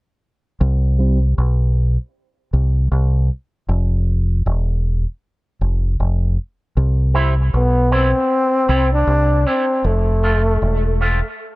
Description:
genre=dub reggae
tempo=78 BPM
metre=4/4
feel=swing 58% on 16ths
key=C major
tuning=A4 = 441 Hz
part: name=deep dub fingered electric bass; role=bass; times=0.6-11.2 s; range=E1 to C2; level=-15 LUFS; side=equal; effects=none
part: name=electric guitar with an envelope filter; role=accompaniment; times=1.0-1.2, 7.1-11.2 s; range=G3 to F4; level=-24 LUFS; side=right 2 dB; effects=wide subtle chorus, high-pass filter, low-pass filter, dub echo
part: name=breathy trombone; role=melody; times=7.6-11.0 s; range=A3 to D4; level=-18 LUFS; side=left 1 dB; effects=dub echo
room=light reverb, studio reverb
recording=none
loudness=-15 LUFS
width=side -20 dB against mid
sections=0.6-6.8 A section; 6.8-11.6 B section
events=none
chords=0.6 N.C.; 6.8 C; 9.8 F

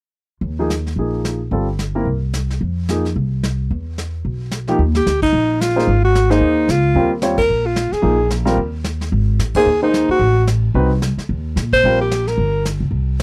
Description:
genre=jazz, small-group swing and bop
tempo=221 BPM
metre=4/4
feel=swing 58% on 8ths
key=Eb mixolydian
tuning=A4 = 439 Hz
part: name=upright bass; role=bass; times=0.4-13.2 s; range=G1 to Bb2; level=-21 LUFS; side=equal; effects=none
part: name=vintage brush drum kit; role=drums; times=0.4-13.2 s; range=brushed snare drum, hi-hat, kick drum, ride cymbal, snare drum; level=-29 LUFS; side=equal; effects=none
part: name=warm grand piano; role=accompaniment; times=0.6-12.0 s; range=F3 to Db5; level=-22 LUFS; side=equal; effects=none
part: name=breathy alto saxophone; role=melody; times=5.0-12.7 s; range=Eb4 to C5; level=-18 LUFS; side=equal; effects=none
room=little or no reverb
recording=dry, close 1970s-style studio recording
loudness=-18 LUFS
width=mono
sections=0.4-4.8 A section; 4.8-13.2 B section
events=band accent 5.2, 7.4, 9.5, 11.7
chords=0.4 Ebsus4; 1.5 Gm7; 2.1 N.C.; 2.6 Fm7; 3.7 E5; 4.8 Ebadd9; 5.9 Ab13; 7.0 Eb13; 8.0 Bb5; 8.6 N.C.; 9.1 Abadd9; 10.2 Adim7; 11.3 Eb69; 12.4 Gm

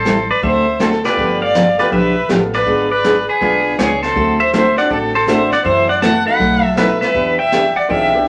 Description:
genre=country, western swing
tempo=161 BPM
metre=4/4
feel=swing 64% on 8ths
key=D mixolydian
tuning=A4 = 445 Hz
part: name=pedal steel guitar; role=melody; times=0.0-8.3 s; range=G#4 to B5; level=-19 LUFS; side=equal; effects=none
part: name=clear fiddle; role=second line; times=0.0-8.3 s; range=G#4 to F#5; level=-20 LUFS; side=equal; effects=none
part: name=picked steel-string acoustic guitar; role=accompaniment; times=0.0-8.1 s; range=B2 to A4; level=-20 LUFS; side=equal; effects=none
part: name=upright bass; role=bass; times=0.0-8.3 s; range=G1 to F#2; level=-30 LUFS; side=equal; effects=none
part: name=jazz brush drum kit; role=drums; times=0.1-8.3 s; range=brushed snare drum, hi-hat, kick drum, snare drum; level=-26 LUFS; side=equal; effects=none
part: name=bright upright piano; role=accompaniment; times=1.0-8.3 s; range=A3 to A4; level=-25 LUFS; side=equal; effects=none
room=wet small room reverb, RT60 0.6 s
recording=none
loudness=-15 LUFS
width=mono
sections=0.0-8.3 A section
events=none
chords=0.4 D9; 1.2 G9; 2.7 G#dim7; 4.2 D9; 5.7 F#m7b5; 6.4 B7; 7.1 Em7

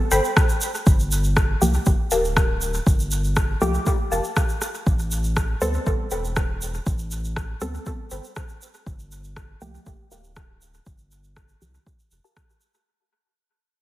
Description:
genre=dub techno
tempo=120 BPM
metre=4/4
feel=straight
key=unclear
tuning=A4 = 440 Hz
part: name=filtered dub chord stab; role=riff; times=0.1-12.3 s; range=G4 to B5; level=-26 LUFS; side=left 1 dB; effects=phaser, sidechain pumping, dub echo
part: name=round analog bass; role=bass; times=0.1-12.2 s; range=D1 to D2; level=-26 LUFS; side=equal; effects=sidechain pumping
part: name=egg shaker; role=percussion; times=0.1-12.8 s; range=none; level=-31 LUFS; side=right 3 dB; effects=none
part: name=electronic kick drum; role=drums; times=0.4-12.5 s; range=none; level=-21 LUFS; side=equal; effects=none
part: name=electronic rim click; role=drums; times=0.4-12.5 s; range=none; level=-28 LUFS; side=equal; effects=dub echo
part: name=filtered dub chord stab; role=stabs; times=1.6-11.8 s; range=F3 to A4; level=-27 LUFS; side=equal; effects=chorus, phaser, cassette tape, dub echo
room=light reverb, digital ambience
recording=heavily compressed radio sound, multiband compression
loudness=-20 LUFS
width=side -16 dB against mid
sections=0.0-12.9 A section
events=fade-out 0.0-12.9; filter sweep on synth stab 0.0-12.9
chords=0.0 Am9; 0.9 Gm9; 4.9 Am9; 8.9 Gm9

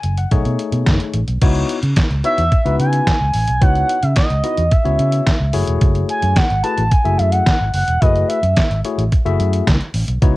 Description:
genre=early-eighties boogie funk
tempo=109 BPM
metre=4/4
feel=straight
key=C# minor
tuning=A4 = 441 Hz
part: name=barky tine electric piano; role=accompaniment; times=0.0-10.4 s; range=A3 to G#5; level=-23 LUFS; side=left 6 dB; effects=overdrive, cassette tape
part: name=vintage muted fingered electric bass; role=bass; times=0.0-10.4 s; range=E1 to C#3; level=-18 LUFS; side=equal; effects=none
part: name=detuned 8-bit digital drum machine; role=drums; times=0.0-10.3 s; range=crash cymbal, handclaps, hi-hat, kick drum, snare drum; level=-16 LUFS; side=equal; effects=cassette tape
part: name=expressive synth lead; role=melody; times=2.2-8.8 s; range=D#5 to A5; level=-19 LUFS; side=right 1 dB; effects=chorus, cassette tape, plate reverb
room=light reverb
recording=home recording on cassette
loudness=-14 LUFS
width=side -19 dB against mid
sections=0.0-1.4 A section; 1.4-10.4 B section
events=none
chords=0.3 B13; 1.4 C#m11; 5.5 F#m9

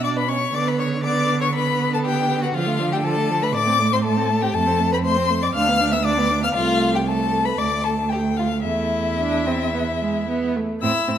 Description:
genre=quick classical-period movement for string quartet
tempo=119 BPM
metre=4/4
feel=rubato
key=A minor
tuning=A4 = 440 Hz
part: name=warm violin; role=melody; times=0.0-11.2 s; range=E5 to F6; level=-23 LUFS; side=left 6 dB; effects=none
part: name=rich violin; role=second line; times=0.0-11.2 s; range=E4 to F5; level=-25 LUFS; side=left 2 dB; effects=none
part: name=rich viola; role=accompaniment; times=0.0-11.2 s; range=F3 to D4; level=-25 LUFS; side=right 3 dB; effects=none
part: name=rich cello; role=bass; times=0.0-11.2 s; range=C2 to D3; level=-24 LUFS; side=right 4 dB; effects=none
room=moderate recital hall reverb, RT60 1.4 s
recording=none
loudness=-18 LUFS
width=side -9 dB against mid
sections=0.0-10.8 A section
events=none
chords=0.0 Bm; 0.5 Bm/D; 2.5 Dm; 3.5 Am; 4.5 F; 5.5 Dm69; 6.6 Am/C; 7.6 D5; 8.6 Am/E; 9.7 E

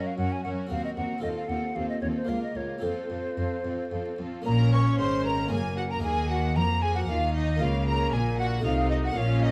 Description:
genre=classical, baroque-style concerto movement with solo episodes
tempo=114 BPM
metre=3/4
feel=straight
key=Bb minor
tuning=A4 = 439 Hz
part: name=bright silver concert flute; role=melody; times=0.0-9.5 s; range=C5 to Db6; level=-35 LUFS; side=equal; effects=none
part: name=clear chamber violin section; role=melody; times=0.0-9.5 s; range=A4 to Db6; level=-40 LUFS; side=equal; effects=none
part: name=rich symphonic violin section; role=second line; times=0.0-9.5 s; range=Eb4 to Db5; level=-39 LUFS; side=equal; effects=none
part: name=harpsichord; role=accompaniment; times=0.0-9.5 s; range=Db2 to Bb4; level=-36 LUFS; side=equal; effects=none
part: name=rich chamber viola section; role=accompaniment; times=0.0-9.5 s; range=Bb3 to Eb4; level=-36 LUFS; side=equal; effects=none
part: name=rich studio cello section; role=bass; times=0.2-9.5 s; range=Db2 to F3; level=-33 LUFS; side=equal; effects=none
part: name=rich chamber double bass section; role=bass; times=4.5-9.5 s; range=Gb1 to F2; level=-30 LUFS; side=equal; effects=none
room=moderate scoring stage reverb, RT60 1.7 s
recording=vinyl crackle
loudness=-27 LUFS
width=mono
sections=0.0-4.5 A section; 4.5-9.5 B section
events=none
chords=0.0 Gb; 0.7 Cm7b5/Eb; 1.2 F7/Eb; 2.3 Bbm/Db; 2.8 F; 4.5 Bbm; 5.5 Gb; 6.0 Eb5; 7.6 Bbm/Db; 8.6 F7/C

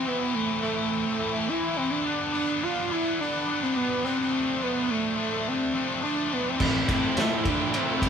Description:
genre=indie rock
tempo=106 BPM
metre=4/4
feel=straight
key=A minor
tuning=A4 = 442 Hz
part: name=fat analog lead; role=melody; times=0.0-8.1 s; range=A3 to F4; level=-27 LUFS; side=right 2 dB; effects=none
part: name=scooped high-gain guitar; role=riff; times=0.0-8.1 s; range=E3 to E4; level=-28 LUFS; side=left 4 dB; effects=distortion
part: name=hollow soft pad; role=sustained chords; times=6.9-8.1 s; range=A4 to C6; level=-40 LUFS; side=right 2 dB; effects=none
part: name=scooped high-gain guitar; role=riff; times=6.6-8.1 s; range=A2 to E4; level=-30 LUFS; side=right 8 dB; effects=distortion
part: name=fuzz picked electric bass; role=bass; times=6.6-8.1 s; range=A1 to A2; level=-32 LUFS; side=equal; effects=overdrive
part: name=vintage drum kit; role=drums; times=6.6-8.1 s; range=crash cymbal, kick drum, ride cymbal, snare drum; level=-26 LUFS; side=equal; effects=none
room=moderate stone room reverb, RT60 1.1 s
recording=band playing live in one room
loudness=-24 LUFS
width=side -7 dB against mid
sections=0.0-8.1 A section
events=none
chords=0.0 Am; 2.1 G; 4.3 Dm; 6.6 Am7

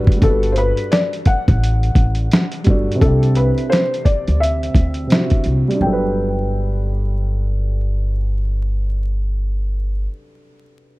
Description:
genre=lo-fi hip hop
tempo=86 BPM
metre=4/4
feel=swing 61% on 16ths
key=G major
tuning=A4 = 438 Hz
part: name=dark upright piano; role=accompaniment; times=0.0-11.0 s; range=C3 to D5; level=-23 LUFS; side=right 1 dB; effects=cassette tape, low-pass filter
part: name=upright bass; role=bass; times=0.0-10.1 s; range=G1 to D2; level=-18 LUFS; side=equal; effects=none
part: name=dusty soul sampler-style drum kit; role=drums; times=0.1-5.8 s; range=hi-hat, kick drum, snare drum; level=-15 LUFS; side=equal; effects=overdrive
part: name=felt-muted upright piano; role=melody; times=0.2-10.1 s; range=A4 to G5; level=-22 LUFS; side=left 2 dB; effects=low-pass filter, tape echo
room=small room reverb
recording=dark, warm production, vinyl crackle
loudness=-15 LUFS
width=side -20 dB against mid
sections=0.2-5.8 A section; 5.8-8.6 B section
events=filter sweep 0.2-5.8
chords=0.2 Gmaj9; 3.0 C; 5.8 Gmaj9

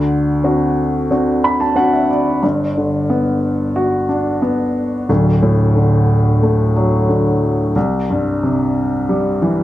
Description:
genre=folk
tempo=90 BPM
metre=4/4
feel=straight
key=G major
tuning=A4 = 440 Hz
part: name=warm upright piano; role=solo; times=0.0-9.6 s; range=D1 to B5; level=-13 LUFS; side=equal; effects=none
room=moderate large studio reverb, RT60 0.8 s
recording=dark, warm production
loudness=-13 LUFS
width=side -14 dB against mid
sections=0.0-2.4 A section; 2.4-9.6 A section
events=none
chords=0.0 D7; 2.4 Gmaj7; 5.1 D; 7.8 C5

